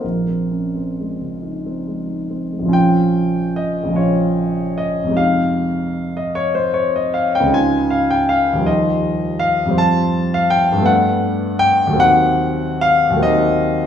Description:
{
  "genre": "classical, impressionist solo piano",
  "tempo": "41-55 BPM (dotted quarters)",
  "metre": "6/8",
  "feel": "rubato",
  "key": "Bb dorian",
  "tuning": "A4 = 440 Hz",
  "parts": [
    { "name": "clear grand piano", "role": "solo", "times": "0.0-13.9 s", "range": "Bb1 to A5", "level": "-15 LUFS", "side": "equal", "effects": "none" }
  ],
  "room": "wet recital hall reverb, RT60 1.6 s",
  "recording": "studio reverb",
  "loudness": "-15 LUFS",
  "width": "side -8 dB against mid",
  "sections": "0.0-2.7 A section; 2.7-13.9 A section",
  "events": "none",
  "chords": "0.0 Bbm11; 2.7 Bbm6; 5.2 Fm9; 7.5 Dbadd9; 8.7 Ebadd9; 9.8 Fadd9; 10.9 Gadd9; 12.0 Ebm6",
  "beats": "| 0.03 1.44 | 2.75 3.99 | 5.19 6.38 | 7.55 8.68 | 9.79 10.88 | 12.03 13.25"
}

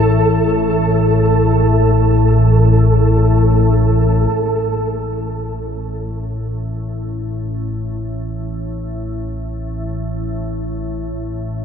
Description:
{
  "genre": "dark ambient drone",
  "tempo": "free time",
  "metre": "none",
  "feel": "none",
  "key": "unclear",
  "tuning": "A4 = 442 Hz",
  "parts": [
    { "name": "organ-like drone", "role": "drone", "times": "0.0-11.6 s", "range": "A1 to A2", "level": "-15 LUFS", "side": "left 1 dB", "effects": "ensemble chorus, built-in reverb" },
    { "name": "flickering grainy texture", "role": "texture", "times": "0.0-4.3 s", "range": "A4", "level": "-19 LUFS", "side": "right 2 dB", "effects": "built-in reverb" }
  ],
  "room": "wet cathedral reverb, RT60 5.3 s",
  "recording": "none",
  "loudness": "-14 LUFS",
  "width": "side -7 dB against mid",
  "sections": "0.0-4.3 A section; 4.3-11.6 B section",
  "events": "none",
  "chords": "none",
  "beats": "free time"
}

